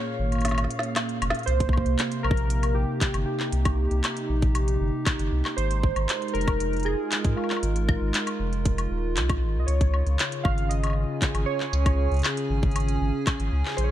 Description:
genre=IDM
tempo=117 BPM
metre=4/4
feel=straight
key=C phrygian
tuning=A4 = 440 Hz
part: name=warbly lo-fi synth keys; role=melody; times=0.0-13.9 s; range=F4 to F5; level=-32 LUFS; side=right 2 dB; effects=chorus, ping-pong delay
part: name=hollow soft pad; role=sustained chords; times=0.0-13.9 s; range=Bb2 to Ab5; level=-30 LUFS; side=right 1 dB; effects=chorus
part: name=bubbling stepped-filter texture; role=texture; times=0.0-1.5 s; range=F5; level=-42 LUFS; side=left 1 dB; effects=chorus, built-in reverb
part: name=warm sub bass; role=bass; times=0.2-13.9 s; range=Eb1 to Ab2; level=-25 LUFS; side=equal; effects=none
part: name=organic electronic drum kit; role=drums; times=0.3-13.9 s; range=handclaps, hi-hat, snare drum, woodblock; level=-30 LUFS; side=left 2 dB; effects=studio reverb
part: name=electronic kick drum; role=drums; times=1.6-13.4 s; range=none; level=-25 LUFS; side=equal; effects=studio reverb
room=light reverb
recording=dark, warm production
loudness=-22 LUFS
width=side -12 dB against mid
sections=0.0-1.5 A section; 1.5-13.9 B section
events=break 0.0-1.5; drum fill 0.5-1.5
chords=0.0 Bbm7; 1.5 Cm7; 5.6 Ab5; 9.7 Db

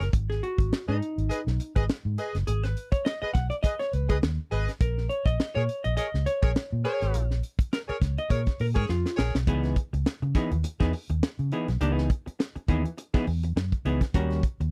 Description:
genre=funk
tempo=103 BPM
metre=4/4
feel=swing 56% on 16ths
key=unclear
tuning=A4 = 441 Hz
part: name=warm horn section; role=second line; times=0.0-9.4 s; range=G#4 to D#5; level=-34 LUFS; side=equal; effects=none
part: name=vintage hollow-body jazz guitar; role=accompaniment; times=0.0-14.6 s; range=E3 to F#5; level=-33 LUFS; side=equal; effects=none
part: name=vintage muted fingered electric bass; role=bass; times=0.0-14.7 s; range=F#1 to C#3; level=-30 LUFS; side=equal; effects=none
part: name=tight funk drum kit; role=drums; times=0.0-14.7 s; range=hi-hat, kick drum, snare drum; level=-29 LUFS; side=equal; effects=none
room=little or no reverb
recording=dry, close 1970s-style studio recording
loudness=-27 LUFS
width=mono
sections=0.0-9.5 A section; 9.5-14.7 B section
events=hollow-body jazz guitar solo 0.0-9.5; drum fill 8.9-9.5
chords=0.1 G#m7; 4.8 A#m7; 9.5 C#m9; 14.1 D#7#9

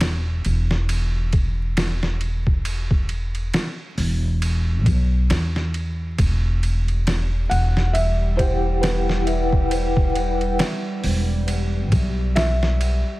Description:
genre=trip hop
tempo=68 BPM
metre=4/4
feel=swing 57% on 16ths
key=E minor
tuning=A4 = 438 Hz
part: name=upright bass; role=bass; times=0.0-13.0 s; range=E1 to E2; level=-21 LUFS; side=equal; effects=none
part: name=trip hop sampler-style drum kit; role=drums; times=0.0-13.0 s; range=hi-hat, kick drum, ride cymbal, snare drum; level=-24 LUFS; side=equal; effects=none
part: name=bowed-like drone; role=texture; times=6.9-13.2 s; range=G3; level=-32 LUFS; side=right 2 dB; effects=built-in reverb
part: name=felt-muted upright piano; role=melody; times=7.5-13.2 s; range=B4 to F#5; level=-28 LUFS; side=equal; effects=vintage 12-bit sampler grit, dub echo
part: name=vibraphone with medium mallets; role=accompaniment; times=8.4-10.6 s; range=E4 to G5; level=-25 LUFS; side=left 2 dB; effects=tremolo, tape echo
room=small room ambience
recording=echo-heavy mix, vinyl crackle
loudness=-19 LUFS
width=side -18 dB against mid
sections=0.0-13.2 A section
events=none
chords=0.0 E5; 6.2 Emadd9

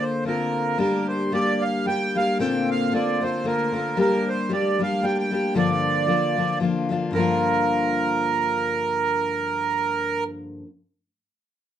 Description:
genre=celtic folk, Celtic waltz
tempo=114 BPM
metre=3/4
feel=swing 56% on 8ths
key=G minor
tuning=A4 = 441 Hz
part: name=accordion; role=melody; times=0.0-10.2 s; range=Bb4 to G5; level=-24 LUFS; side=right 5 dB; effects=none
part: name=picked steel-string acoustic guitar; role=accompaniment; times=0.0-10.7 s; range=G2 to G4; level=-23 LUFS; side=left 3 dB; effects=none
room=wet small room reverb, RT60 0.5 s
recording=dark, warm production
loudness=-20 LUFS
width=side -10 dB against mid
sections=0.0-7.1 A section; 7.1-10.3 B section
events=none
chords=0.0 Bbadd9; 0.8 Gm; 2.4 Bbadd9; 4.0 Gm; 5.6 Gm7

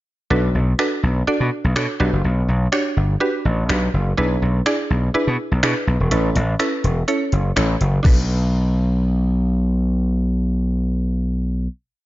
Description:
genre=dance-pop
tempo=124 BPM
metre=4/4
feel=straight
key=B minor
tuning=A4 = 441 Hz
part: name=mallet-like synth pluck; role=accompaniment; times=0.3-11.7 s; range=C#4 to D5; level=-22 LUFS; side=right 1 dB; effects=chorus, sidechain pumping
part: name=gritty slap bass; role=bass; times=0.3-11.7 s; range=E1 to B2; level=-18 LUFS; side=equal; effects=overdrive, sidechain pumping
part: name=smooth R&B drum kit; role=drums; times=0.8-8.2 s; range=crash cymbal, finger snaps, hi-hat, kick drum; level=-21 LUFS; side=equal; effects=none
room=light reverb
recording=dark, warm production, nothing above 7.5 kHz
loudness=-17 LUFS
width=side -16 dB against mid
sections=0.3-8.0 verse; 8.0-11.9 final chord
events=none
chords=0.3 Bm7; 2.0 Gmaj7; 4.2 E7/B; 6.1 Aadd9; 8.0 Bm7

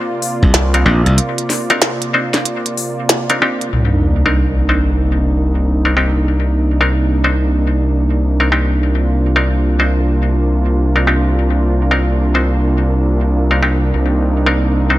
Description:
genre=glitch hop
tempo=94 BPM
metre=4/4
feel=swing 63% on 16ths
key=C minor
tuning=A4 = 440 Hz
part: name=warm analog pad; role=sustained chords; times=0.0-15.0 s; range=C3 to D5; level=-18 LUFS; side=right 2 dB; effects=chorus, vintage 12-bit sampler grit, sidechain pumping
part: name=glitchy drum kit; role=drums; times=0.2-3.7 s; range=hi-hat, snare drum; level=-17 LUFS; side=equal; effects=overdrive
part: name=slap bass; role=bass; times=0.4-1.2 s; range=Bb1 to C2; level=-12 LUFS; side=equal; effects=none
part: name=electronic kick drum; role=drums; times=0.4-0.5 s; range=none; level=-12 LUFS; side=equal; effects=none
part: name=gritty driven synth bass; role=bass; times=0.5-15.0 s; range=C2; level=-15 LUFS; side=equal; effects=tube saturation
part: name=muted clav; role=stabs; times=0.7-15.0 s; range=C4 to C5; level=-18 LUFS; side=left 1 dB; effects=sidechain pumping, ping-pong delay
part: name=sub drop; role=sound effects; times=3.7-6.3 s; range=none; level=-20 LUFS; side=left 1 dB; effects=none
room=little or no reverb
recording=none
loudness=-12 LUFS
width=side -15 dB against mid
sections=0.0-3.7 A section; 3.7-15.0 B section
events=drop 0.0-3.7; break 1.2-3.7; impact 3.7-6.3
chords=0.0 Cm9

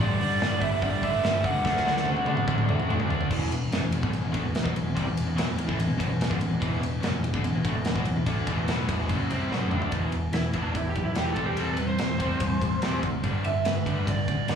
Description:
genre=hard rock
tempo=145 BPM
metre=4/4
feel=straight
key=E minor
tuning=A4 = 440 Hz
part: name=lead guitar through a small cranked amp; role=melody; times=0.0-2.9, 10.3-14.6 s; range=D4 to F#5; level=-29 LUFS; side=right 3 dB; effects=overdrive, plate reverb, slapback echo, tape echo
part: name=cranked stack guitar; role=riff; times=0.0-14.6 s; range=E2 to D4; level=-29 LUFS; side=equal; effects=overdrive, slapback echo
part: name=overdriven picked electric bass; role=bass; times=0.0-14.6 s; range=E1 to D2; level=-29 LUFS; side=equal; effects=none
part: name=big rock drum kit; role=drums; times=0.2-14.6 s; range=crash cymbal, hi-hat, kick drum, ride cymbal, snare drum, toms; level=-29 LUFS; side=equal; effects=none
room=light reverb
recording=live gig heard through the venue's PA, club reverb, small room ambience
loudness=-24 LUFS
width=side -7 dB against mid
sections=0.0-3.3 A section; 3.3-9.9 B section; 9.9-14.6 C section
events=drum fill 1.6-3.3, 9.5-9.9; lead electric guitar solo 9.9-14.6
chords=0.0 G5; 1.6 D; 3.3 Em; 9.9 E5; 11.4 C/E; 13.2 G

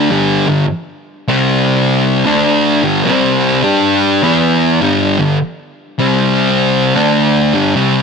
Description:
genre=metal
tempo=102 BPM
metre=4/4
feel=swing 64% on 8ths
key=unclear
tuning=A4 = 441 Hz
part: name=thick fuzz guitar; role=solo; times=0.0-8.0 s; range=G2 to G4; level=-10 LUFS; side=equal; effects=distortion
room=digital ambience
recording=none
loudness=-10 LUFS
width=side -5 dB against mid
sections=0.0-8.0 A section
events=none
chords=0.1 G5; 1.3 C5; 2.2 D5; 2.8 G5; 3.0 C5; 3.6 G5; 4.2 E5; 4.8 G5; 6.0 C5; 6.9 D5; 7.5 G5

